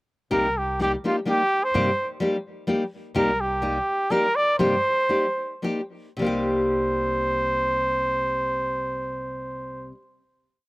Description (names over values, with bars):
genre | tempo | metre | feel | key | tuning
mexican folk, mariachi | 106-129 BPM | 3/4 | rubato | C minor | A4 = 439 Hz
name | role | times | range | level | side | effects
clear trumpet | melody | 0.3-9.9 s | F4 to D5 | -23 LUFS | right 1 dB | none
nylon-string guitar | accompaniment | 0.3-10.0 s | C3 to G4 | -26 LUFS | left 1 dB | none
upright bass | bass | 0.3-9.9 s | C2 to G2 | -34 LUFS | equal | none
room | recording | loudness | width
little or no reverb | recorded outdoors, with no room sound | -21 LUFS | side -21 dB against mid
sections
0.3-6.2 A section; 6.2-9.5 final chord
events
slowing down 3.2-6.2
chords
0.3 Cm7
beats
| 0.32 0.80 1.27 | 1.75 2.22 2.69 | 3.15 3.62 4.10 | 4.58 5.09 5.62 | 6.18 6.74 7.30 | 7.85 8.40 8.96